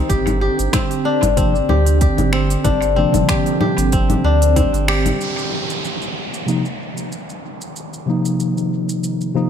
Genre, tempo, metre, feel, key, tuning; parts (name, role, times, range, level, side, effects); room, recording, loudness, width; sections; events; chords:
organic downtempo; 94 BPM; 4/4; swing 55% on 16ths; C minor; A4 = 441 Hz
warm analog pad; sustained chords; 0.0-9.5 s; D3 to C5; -25 LUFS; right 4 dB; chorus, sidechain pumping
kora; arpeggios; 0.0-6.4 s; C4 to G4; -20 LUFS; left 4 dB; analog delay
warm sub bass; bass; 0.1-5.1 s; G1 to D2; -18 LUFS; equal
electronic kick drum; drums; 0.1-4.7 s; -20 LUFS; equal; overdrive
organic electronic drum kit; drums; 0.1-9.3 s; congas, finger snaps, hi-hat, shaker; -23 LUFS; left 2 dB; overdrive, analog delay
tine electric piano; accompaniment; 1.4-9.5 s; C3 to Eb4; -21 LUFS; left 1 dB; fast stereo tremolo, sidechain pumping, analog delay
downlifter; sound effects; 5.2-9.5 s; -27 LUFS; right 2 dB
light reverb, digital ambience; echo-heavy mix; -15 LUFS; side -8 dB against mid
0.0-5.2 A section; 5.2-9.5 B section
band accent 4.9-5.2
0.1 Gsus4; 5.2 Cm